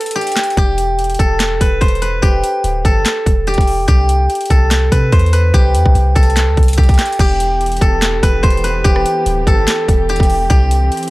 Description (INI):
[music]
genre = hip hop, trap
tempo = 145 BPM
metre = 4/4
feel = half-time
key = E minor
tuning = A4 = 442 Hz
[part]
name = steel-string zither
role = melody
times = 0.0-11.1 s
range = G4 to C5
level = -16 LUFS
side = equal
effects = none
[part]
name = trap drum kit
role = drums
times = 0.0-11.1 s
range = crash cymbal, handclaps, hi-hat, kick drum, rim click, snare drum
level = -14 LUFS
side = equal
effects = overdrive
[part]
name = clean 808-style bass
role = bass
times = 0.6-10.9 s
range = D1 to C3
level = -15 LUFS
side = equal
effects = none
[part]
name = muted chamber string section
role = sustained chords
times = 7.2-11.1 s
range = E3 to G4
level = -25 LUFS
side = left 1 dB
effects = none
[sound]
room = digital ambience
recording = dry, gritty hardware recording, cassette tape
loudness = -11 LUFS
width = side -19 dB against mid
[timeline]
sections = 0.0-7.2 A section; 7.2-11.1 B section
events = break 0.0-0.6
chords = 0.0 N.C.; 0.6 Em; 3.9 C; 7.2 Em; 10.5 C